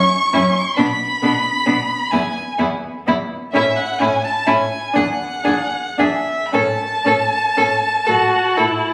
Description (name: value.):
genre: classical, slow romantic movement for string quartet.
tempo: 36-45 BPM (dotted quarters).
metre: 6/8.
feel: rubato.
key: A major.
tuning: A4 = 438 Hz.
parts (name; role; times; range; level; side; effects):
rich violin; melody; 0.0-8.9 s; E5 to C#6; -22 LUFS; equal; none.
rich violin; second line; 0.3-8.7 s; D4 to A4; -24 LUFS; equal; none.
rich viola; accompaniment; 0.3-8.9 s; B3 to F#4; -23 LUFS; equal; none.
clear cello; bass; 0.3-8.7 s; E2 to B2; -28 LUFS; equal; none.
room: wet recital hall reverb, RT60 1.6 s.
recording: recorded on a phone in the room, club reverb.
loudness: -18 LUFS.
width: mono.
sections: 0.0-8.9 A section.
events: none.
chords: 0.0 F#5; 0.8 N.C.; 2.1 E5; 3.5 A; 5.0 E7(no3); 6.5 A.